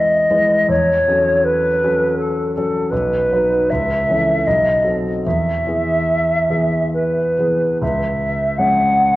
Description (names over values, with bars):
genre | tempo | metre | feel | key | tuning
classical, romantic duo for flute and grand piano | 62-83 BPM | 3/4 | rubato | E major | A4 = 440 Hz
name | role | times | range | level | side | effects
mellow hollow silver concert flute | melody | 0.0-9.2 s | A4 to F#5 | -16 LUFS | equal | none
clear grand piano | accompaniment | 0.0-9.2 s | B1 to C#5 | -20 LUFS | equal | none
room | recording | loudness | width
wet scoring stage reverb, RT60 1.7 s | worn, warbling old tape, cassette tape, warbly pitch drift | -15 LUFS | side -17 dB against mid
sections
0.0-7.8 A section; 7.8-9.2 B section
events
none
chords
0.0 E; 0.7 F#m/E; 2.9 B; 3.7 A/C#; 4.5 B7b9; 5.2 E; 7.8 C#m